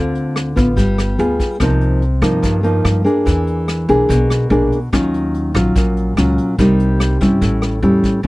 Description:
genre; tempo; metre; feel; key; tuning
bossa nova; 145 BPM; 4/4; straight; unclear; A4 = 440 Hz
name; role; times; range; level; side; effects
nylon-string guitar; accompaniment; 0.0-8.3 s; G2 to A4; -15 LUFS; equal; none
upright bass; bass; 0.0-8.3 s; G1 to G2; -18 LUFS; equal; none
vintage brush drum kit; drums; 0.2-8.1 s; hi-hat, kick drum, rim click; -22 LUFS; equal; none
room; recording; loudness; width
little or no reverb; dry, close 1970s-style studio recording; -13 LUFS; side -20 dB against mid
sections
0.0-8.2 A section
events
none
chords
0.0 Dm7; 0.8 G7b9; 1.6 Cm11; 3.3 E7#11; 4.9 Ebm9; 6.6 Cm7; 7.4 A7

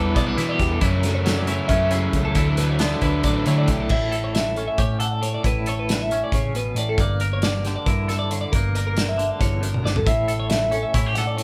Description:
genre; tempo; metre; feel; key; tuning
math rock and midwest emo; 273 BPM (eighths); 7/8; straight; unclear; A4 = 440 Hz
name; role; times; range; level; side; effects
twangy electric guitar; accompaniment; 0.0-11.4 s; D2 to Bb4; -30 LUFS; equal; tremolo
twelve-string electric guitar; arpeggios; 0.0-11.4 s; G4 to F#5; -29 LUFS; equal; none
crunchy overdriven guitar; riff; 0.0-3.9 s; F#2 to E4; -27 LUFS; equal; none
hollow-body short-scale picked electric bass; bass; 0.0-11.4 s; G1 to E3; -27 LUFS; equal; none
loose indie drum kit; drums; 0.2-11.4 s; crash cymbal, hi-hat, kick drum, snare drum, toms; -27 LUFS; equal; none
room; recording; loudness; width
moderate studio reverb, RT60 0.7 s; band playing live in one room; -22 LUFS; mono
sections
0.0-3.9 A section; 3.9-11.4 B section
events
drum fill 9.7-10.1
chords
0.0 Em7; 0.8 F#m7; 2.4 A69; 7.0 Gm6; 10.1 A

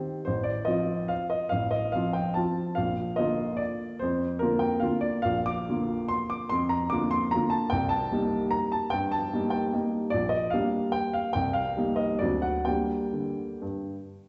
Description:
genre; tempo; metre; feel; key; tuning
classical, piano waltz; 123-158 BPM; 3/4; rubato; Bb major, G minor from 5.3 s; A4 = 440 Hz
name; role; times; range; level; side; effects
warm upright piano; solo; 0.0-14.3 s; A1 to D6; -28 LUFS; equal; none
room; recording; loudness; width
wet recital hall reverb, RT60 1.6 s; heard from further back in the room, nothing above 8.0 kHz; -28 LUFS; mono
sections
0.0-14.3 A section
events
none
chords
0.3 F7/A; 2.8 Bb; 7.7 Cm7; 10.1 Gm/Bb; 11.4 Cm7; 12.2 D7; 12.7 Gm

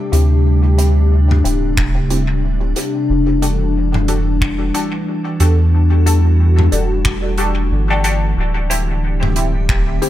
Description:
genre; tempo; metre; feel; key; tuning
ambient dub; 91 BPM; 4/4; swing 59% on 16ths; E minor; A4 = 443 Hz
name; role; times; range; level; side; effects
soft additive organ-like pad; sustained chords; 0.0-10.1 s; C3 to G4; -20 LUFS; left 1 dB; ensemble chorus, built-in reverb
filtered dub chord stab; stabs; 0.1-10.1 s; C4 to A4; -24 LUFS; left 2 dB; phaser, lush chorus, dub echo
soft dub sub bass; bass; 0.1-10.0 s; D1 to E2; -14 LUFS; equal; none
modern studio drum kit; drums; 0.1-10.1 s; finger snaps, hi-hat, toms; -23 LUFS; equal; dub echo
electronic kick drum; drums; 1.8-9.8 s; none; -20 LUFS; equal; overdrive
room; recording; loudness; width
small room ambience; none; -13 LUFS; side -13 dB against mid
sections
0.0-10.1 A section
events
none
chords
0.0 D7sus4; 3.1 Em11; 8.4 D7sus4

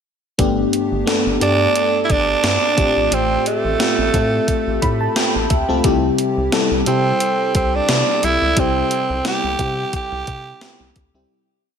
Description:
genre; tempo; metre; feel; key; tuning
1980s-style pop; 88 BPM; 4/4; swing 55% on 16ths; unclear; A4 = 440 Hz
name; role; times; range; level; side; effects
FM electric piano with soft pad layer; accompaniment; 0.4-11.3 s; G2 to B5; -20 LUFS; left 2 dB; chorus
rubbery square bass; bass; 0.4-11.3 s; G1 to C3; -24 LUFS; equal; none
gated 80s digital drum machine; drums; 0.4-11.1 s; hi-hat, kick drum, snare drum; -21 LUFS; equal; gated reverb, gated reverb snare
growling tenor saxophone; melody; 1.4-10.9 s; A3 to G4; -19 LUFS; right 3 dB; tape echo
room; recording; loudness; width
light reverb; none; -15 LUFS; side -7 dB against mid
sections
0.4-11.3 verse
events
FM electric piano fill 4.5-5.8; fade-out 8.6-11.3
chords
0.4 Gadd9; 2.8 Fadd9/A; 5.8 C

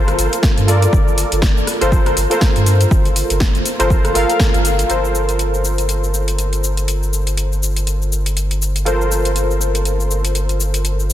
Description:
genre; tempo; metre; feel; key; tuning
deep house; 121 BPM; 4/4; swing 57% on 16ths; G minor; A4 = 439 Hz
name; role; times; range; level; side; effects
warm analog keys; stabs; 0.0-11.1 s; F4 to F5; -19 LUFS; equal; chorus, sidechain pumping, dub echo
sub bass with octave; bass; 0.0-11.1 s; G1 to G2; -18 LUFS; equal; sidechain pumping
deep house drum kit; drums; 0.1-11.1 s; hi-hat, rim click, shaker, snare drum; -22 LUFS; left 1 dB; overdrive
electronic kick drum; drums; 0.4-4.5 s; none; -15 LUFS; equal; overdrive
room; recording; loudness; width
light reverb; dense, heavily limited modern master; -14 LUFS; side -12 dB against mid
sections
0.0-4.9 A section; 4.9-11.1 B section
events
none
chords
0.0 Gm11

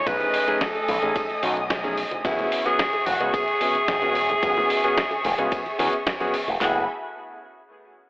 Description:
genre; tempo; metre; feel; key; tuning
nu-disco, nu disco; 110 BPM; 4/4; straight; unclear; A4 = 436 Hz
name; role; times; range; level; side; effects
raspy tenor saxophone; melody; 0.0-6.9 s; E4 to B4; -24 LUFS; equal; vintage 12-bit sampler grit
rich studio string section; sustained chords; 0.0-6.9 s; A3 to D#6; -29 LUFS; equal; sidechain pumping
warm electric grand piano; accompaniment; 0.1-6.8 s; A3 to G#4; -27 LUFS; equal; none
picked electric bass with an envelope filter; bass; 0.1-6.9 s; E1 to E2; -29 LUFS; equal; sidechain pumping
dusty soul sampler-style drum kit; drums; 0.1-6.6 s; hi-hat, ride cymbal, snare drum; -29 LUFS; equal; none
pop drum kit; drums; 0.1-6.7 s; hi-hat, kick drum, snare drum; -30 LUFS; equal; none
congas and bongos; percussion; 0.1-6.6 s; none; -36 LUFS; equal; none
room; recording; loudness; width
moderate lush hall reverb, RT60 2.2 s; dry, gritty hardware recording, telephone sound; -20 LUFS; side -23 dB against mid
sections
0.0-6.6 A section; 6.6-8.1 B section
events
drop 0.0-6.6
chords
0.0 B13; 2.2 E6; 6.6 F#m11

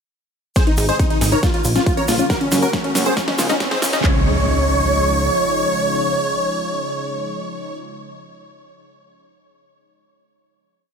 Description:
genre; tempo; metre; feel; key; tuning
uplifting trance; 138 BPM; 4/4; straight; Db major; A4 = 441 Hz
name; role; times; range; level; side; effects
big supersaw lead; melody; 0.6-7.8 s; Db4 to Db5; -21 LUFS; right 1 dB; sidechain pumping, digital delay
plucky unison lead; second line; 0.6-7.8 s; Db4 to Db5; -27 LUFS; equal; cassette tape, sidechain pumping, ping-pong delay
lush unison pad; sustained chords; 0.6-7.8 s; C3 to Gb4; -27 LUFS; equal; chorus, sidechain pumping
tight sequenced synth; arpeggios; 0.6-4.2 s; Bb3 to Ab4; -25 LUFS; left 5 dB; chorus, sidechain pumping, ping-pong delay
big-room dance drum kit; drums; 0.6-4.1 s; handclaps, kick drum; -19 LUFS; equal; none
big-room dance drum kit; drums; 0.6-4.0 s; hi-hat, snare drum; -25 LUFS; equal; none
egg shaker; percussion; 0.6-4.0 s; none; -28 LUFS; right 4 dB; none
riser and impact; sound effects; 2.3-7.8 s; none; -27 LUFS; equal; none
plucky analog bass; bass; 0.8-5.3 s; Gb1 to Db2; -21 LUFS; equal; sidechain pumping
room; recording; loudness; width
light reverb, digital ambience; high-pass filter; -16 LUFS; side -6 dB against mid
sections
0.6-4.0 build; 4.0-7.5 final chord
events
build-up 0.6-4.0; drum fill 0.6-4.0; filter sweep on synth arpeggio sound 0.6-4.0; filter sweep 0.6-4.0; riser 2.3-4.0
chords
0.6 Ab; 1.4 Bbm; 2.3 Gb; 3.2 Dbadd9

